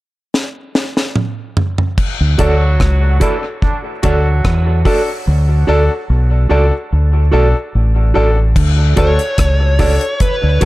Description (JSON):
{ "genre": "dub reggae", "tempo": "73 BPM", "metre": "4/4", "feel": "straight", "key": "D major", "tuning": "A4 = 440 Hz", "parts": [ { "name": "deep reggae drum kit", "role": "drums", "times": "0.3-10.7 s", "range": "crash cymbal, hi-hat, kick drum, rim click, snare drum, toms", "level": "-16 LUFS", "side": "equal", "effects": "none" }, { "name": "deep dub fingered electric bass", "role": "bass", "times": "2.2-10.7 s", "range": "A1 to E2", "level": "-12 LUFS", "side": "equal", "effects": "none" }, { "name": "clear horn section", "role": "second line", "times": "2.4-4.8 s", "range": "D3 to F#4", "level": "-25 LUFS", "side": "right 3 dB", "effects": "dub echo" }, { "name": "mellow electric guitar", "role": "accompaniment", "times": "2.4-10.7 s", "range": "F#4 to D5", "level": "-21 LUFS", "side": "right 4 dB", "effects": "dub echo" }, { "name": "bright grand piano", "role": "stabs", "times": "2.4-10.7 s", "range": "D4 to A4", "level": "-21 LUFS", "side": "left 3 dB", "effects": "dub echo" }, { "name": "smooth overdriven lead guitar", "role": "melody", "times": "9.0-10.7 s", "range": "B4 to C#5", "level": "-18 LUFS", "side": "equal", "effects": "dub echo" } ], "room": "light reverb", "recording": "echo-heavy mix", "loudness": "-12 LUFS", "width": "side -18 dB against mid", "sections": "0.0-2.0 A section; 2.0-8.6 B section; 8.6-10.7 C section", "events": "drum fill 0.3-2.0; part muted 5.3-8.6", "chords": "0.0 N.C.; 2.0 D" }